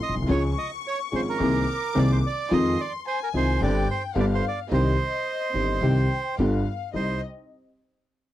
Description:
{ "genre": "tango", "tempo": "108 BPM", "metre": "4/4", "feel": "rubato", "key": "C minor", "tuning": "A4 = 441 Hz", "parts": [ { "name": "bandoneon", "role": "melody", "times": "0.0-7.2 s", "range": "Bb4 to Eb5", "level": "-28 LUFS", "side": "right 6 dB", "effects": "none" }, { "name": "warm chamber violin section", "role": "second line", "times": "0.0-7.2 s", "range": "Eb5 to D6", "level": "-33 LUFS", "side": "left 8 dB", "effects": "none" }, { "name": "warm upright piano", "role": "accompaniment", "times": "0.1-7.2 s", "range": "G1 to Ab4", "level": "-25 LUFS", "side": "left 2 dB", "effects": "none" }, { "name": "upright bass", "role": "bass", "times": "0.1-7.2 s", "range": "G1 to F2", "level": "-26 LUFS", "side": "right 1 dB", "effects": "none" }, { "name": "rich symphonic string section", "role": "stabs", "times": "0.3-7.2 s", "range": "B3 to Bb4", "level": "-35 LUFS", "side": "right 3 dB", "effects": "none" } ], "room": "little or no reverb", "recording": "dry, close 1970s-style studio recording", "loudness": "-22 LUFS", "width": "side -13 dB against mid", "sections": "0.0-6.9 A section; 6.9-8.3 B section", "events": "none", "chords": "0.3 Db; 1.4 Abadd9/C; 2.5 Fm7; 3.6 Gsus4; 4.2 G; 4.7 Cm; 6.4 G7; 6.9 Cm", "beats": "| 0.29 0.85 1.41 1.96 | 2.51 3.06 3.61 4.16 | 4.72 5.26 5.82 6.38 | 6.95" }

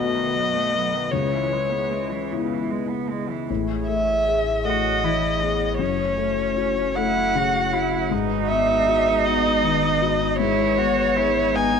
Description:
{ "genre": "neoclassical piano and strings", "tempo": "52 BPM (dotted quarters)", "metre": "6/8", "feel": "rubato", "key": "C# minor", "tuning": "A4 = 438 Hz", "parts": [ { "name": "muted violin", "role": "melody", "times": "0.0-11.8 s", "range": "C#5 to G#5", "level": "-22 LUFS", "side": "left 2 dB", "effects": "none" }, { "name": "muted cello", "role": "second line", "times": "0.0-11.8 s", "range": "B2 to F#4", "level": "-26 LUFS", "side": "right 11 dB", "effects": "none" }, { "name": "felt-muted upright piano", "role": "accompaniment", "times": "0.0-11.8 s", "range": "B1 to G#4", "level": "-25 LUFS", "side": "left 9 dB", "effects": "none" }, { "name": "brassy analog pad", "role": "sustained chords", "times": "0.0-11.8 s", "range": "E3 to C#5", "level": "-32 LUFS", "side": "right 2 dB", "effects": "chorus" }, { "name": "pure sine sub bass", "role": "bass", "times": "3.5-11.8 s", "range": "F#1 to A1", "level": "-31 LUFS", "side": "right 2 dB", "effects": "none" } ], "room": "moderate echo chamber reverb, RT60 2.3 s", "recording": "1960s-style stereo with parts hard left and right", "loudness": "-19 LUFS", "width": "side -6 dB against mid", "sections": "0.0-3.5 A section; 3.5-11.8 B section", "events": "none", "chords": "0.0 B7; 1.1 C#m7; 3.5 Amaj7; 5.8 F#m7; 8.1 G#m7; 10.4 C#m7/G#", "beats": "| 1.13 2.31 | 3.49 4.65 | 5.80 6.97 | 8.12 9.25 | 10.39 11.55" }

